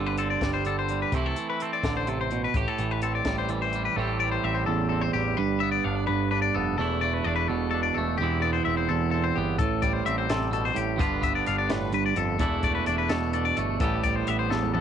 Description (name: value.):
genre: math rock and midwest emo.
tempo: 85 BPM (dotted quarters).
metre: 6/8.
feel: straight.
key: A minor.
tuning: A4 = 440 Hz.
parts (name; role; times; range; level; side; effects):
twangy electric guitar; accompaniment; 0.0-14.8 s; E2 to G4; -28 LUFS; right 8 dB; cassette tape.
twangy electric guitar; arpeggios; 0.0-14.8 s; G4 to F5; -28 LUFS; left 10 dB; cassette tape.
growling picked electric bass; bass; 0.0-14.8 s; E1 to C2; -31 LUFS; left 1 dB; overdrive.
compact cocktail drum kit; drums; 0.2-3.8, 9.6-14.8 s; hi-hat, kick drum, snare drum, toms; -30 LUFS; left 1 dB; cassette tape.
room: studio reverb.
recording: home recording on cassette.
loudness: -24 LUFS.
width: side -8 dB against mid.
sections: 0.0-4.0 A section; 4.0-14.8 B section.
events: drum fill 14.5.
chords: 0.0 G7sus4; 1.1 Am7; 5.4 G7; 6.8 E7sus4; 8.2 Cmaj7/E; 9.6 Am7; 11.0 G7; 12.4 E7sus4; 13.8 Am11.